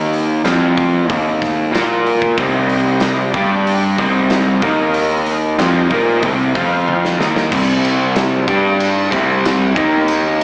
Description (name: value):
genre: blues rock power trio and southern rock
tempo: 94 BPM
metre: 4/4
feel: straight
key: C minor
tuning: A4 = 440 Hz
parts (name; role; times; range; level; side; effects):
- crunchy overdriven guitar; riff; 0.0-10.4 s; C3 to Bb4; -18 LUFS; equal; slapback echo
- fuzz picked electric bass; bass; 0.0-10.4 s; C2 to Bb2; -21 LUFS; equal; overdrive
- big rock drum kit; drums; 0.1-10.4 s; crash cymbal, hi-hat, kick drum, ride cymbal, snare drum, toms; -24 LUFS; equal; none
- overdriven tonewheel organ; sustained chords; 2.4-7.5 s; Bb3 to C6; -25 LUFS; equal; slow rotary speaker, chorus vibrato
room: light reverb, small room ambience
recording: live gig heard through the venue's PA, club reverb, small speaker sound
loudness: -15 LUFS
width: mono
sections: 0.0-7.5 A section; 7.5-10.4 A section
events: tonewheel organ fill 6.5-7.5; drum fill 6.9-7.5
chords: 0.4 F5; 1.1 Eb5; 1.7 Bb5; 2.4 Cm; 3.3 G5; 4.0 Cm; 4.6 Eb5; 5.6 Cm; 6.5 F5; 7.2 Cm; 7.5 C5; 8.5 G5; 9.1 C5; 9.8 Eb5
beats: 0.45 1.09 1.73 | 2.37 3.02 3.66 4.30 | 4.94 5.58 6.23 6.87 | 7.51 8.15 8.79 9.44 | 10.08